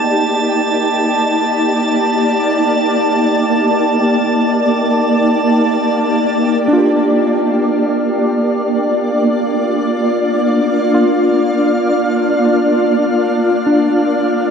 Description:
ambient; free time; Bb major; A4 = 443 Hz
shimmering ambient pad; sustained chords; 0.0-14.5 s; Bb3 to A5; -13 LUFS; equal; chorus, built-in reverb
drifting glass-harmonics texture; texture; 0.0-14.5 s; F5 to A5; -22 LUFS; right 3 dB; chorus, built-in reverb
muted felt-like synth keys; arpeggios; 6.7-14.5 s; D4 to G4; -18 LUFS; equal; chorus, ping-pong delay
wet huge ambient reverb, RT60 9.2 s; -12 LUFS; side -6 dB against mid
0.0-6.6 A section; 6.6-14.5 B section
fade-in on synth texture 6.6-14.5
0.0 Ebmaj7; 6.6 Bb
free time

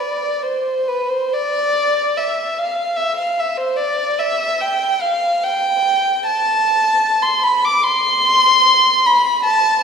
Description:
classical, free, expressive piece for unaccompanied violin; 69-78 BPM; 4/4; rubato; C major; A4 = 438 Hz
dark violin; solo; 0.0-9.8 s; B4 to D6; -14 LUFS; equal
wet recital hall reverb, RT60 1.8 s; recorded in a church or concert hall; -14 LUFS; side -6 dB against mid
0.0-9.8 A section
0.41 1.29 2.14 | 2.97 3.80 4.63 5.47 | 6.26 7.04 7.83 8.64 | 9.49

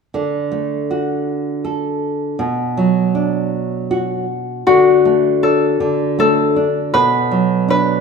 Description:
children's music, lullaby; 79 BPM; 3/4; straight; D major; A4 = 440 Hz
nylon-string guitar; accompaniment; 0.1-8.0 s; B2 to A4; -17 LUFS; right 4 dB
concert harp; melody; 4.7-8.0 s; F#4 to B4; -13 LUFS; left 4 dB
moderate scoring stage reverb, RT60 1.6 s; minimal, uncompressed stereo recording; -14 LUFS; side -5 dB against mid
0.1-4.7 A section; 4.7-8.0 B section
0.1 D; 2.4 Bm; 4.7 D; 6.9 Bm
| 0.14 0.90 1.65 | 2.39 3.15 3.90 | 4.67 5.44 6.19 | 6.95 7.70

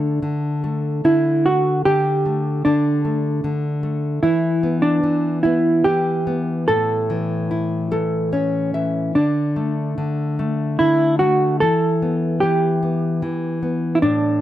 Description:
children's music, lullaby; 74 BPM; 3/4; rubato; A4 = 441 Hz
hollow-body jazz guitar; melody; 0.0-14.4 s; D4 to A4; -19 LUFS; right 2 dB
nylon-string guitar; accompaniment; 0.0-14.4 s; A2 to E5; -20 LUFS; left 2 dB
small room ambience; dry, close 1970s-style studio recording; -17 LUFS; side -12 dB against mid
0.0-14.4 A section
nylon-string guitar fill 7.5-9.1
0.0 D5; 4.2 Em; 6.7 A; 9.1 D5; 11.6 Em
0.23 1.05 | 1.86 2.65 3.44 | 4.23 5.04 5.86 | 6.68 7.50 8.32 | 9.15 9.98 10.80 | 11.62 12.43 13.23 | 14.03

